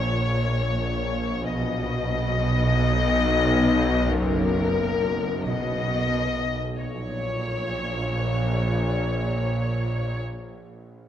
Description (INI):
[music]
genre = cinematic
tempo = free time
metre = none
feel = none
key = Bb phrygian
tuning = A4 = 440 Hz
[part]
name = muted chamber violin section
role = melody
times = 0.0-10.2 s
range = Bb4 to D#5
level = -27 LUFS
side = left 5 dB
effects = none
[part]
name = muted chamber cello section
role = bass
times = 0.0-10.2 s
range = Gb2 to B2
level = -28 LUFS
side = right 2 dB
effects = none
[part]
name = muted studio double bass section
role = bass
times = 0.0-10.2 s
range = Gb1 to B1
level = -29 LUFS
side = right 2 dB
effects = none
[part]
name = bowed-like drone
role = drone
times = 0.0-10.2 s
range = Gb1 to B1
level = -27 LUFS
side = left 1 dB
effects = built-in reverb
[sound]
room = moderate scoring stage reverb, RT60 1.8 s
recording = none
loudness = -22 LUFS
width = side -10 dB against mid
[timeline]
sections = 0.0-6.8 A section; 6.8-9.4 B section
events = none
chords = 0.0 Bbm; 1.5 B; 4.1 Gb; 5.5 B; 6.8 Bbm